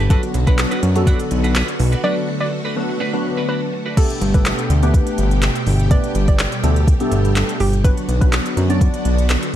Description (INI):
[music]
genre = dance-pop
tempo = 124 BPM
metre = 4/4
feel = straight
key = G major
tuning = A4 = 440 Hz
[part]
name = string machine, violins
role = sustained chords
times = 0.0-9.6 s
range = B2 to G4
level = -25 LUFS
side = equal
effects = ensemble chorus, sidechain pumping
[part]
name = twelve-string electric guitar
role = riff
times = 0.0-4.0 s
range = D4 to B4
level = -27 LUFS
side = right 4 dB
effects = lush chorus
[part]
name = fat analog bass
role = bass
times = 0.0-9.4 s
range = G1 to F#2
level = -17 LUFS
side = equal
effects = sidechain pumping
[part]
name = hollow square pluck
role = melody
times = 0.1-8.5 s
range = G4 to D5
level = -26 LUFS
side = right 1 dB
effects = chorus, sidechain pumping, ping-pong delay
[part]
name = glassy digital keys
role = accompaniment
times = 0.1-9.4 s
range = F#3 to D5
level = -23 LUFS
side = left 1 dB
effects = chorus, sidechain pumping
[part]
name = smooth R&B drum kit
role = drums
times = 0.1-9.5 s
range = crash cymbal, handclaps, hi-hat, kick drum, snare drum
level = -18 LUFS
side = equal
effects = none
[sound]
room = little or no reverb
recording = dark, warm production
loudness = -15 LUFS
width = side -11 dB against mid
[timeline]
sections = 0.0-4.0 A section; 4.0-9.6 A section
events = drop 0.0-4.0, 4.0-9.6; break 2.0-4.0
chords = 0.1 Bm; 4.0 Gadd9; 7.8 Bm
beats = | 0.10 0.58 1.07 1.55 | 2.04 2.52 3.00 3.49 | 3.97 4.46 4.94 5.42 | 5.91 6.39 6.88 7.36 | 7.84 8.33 8.81 9.29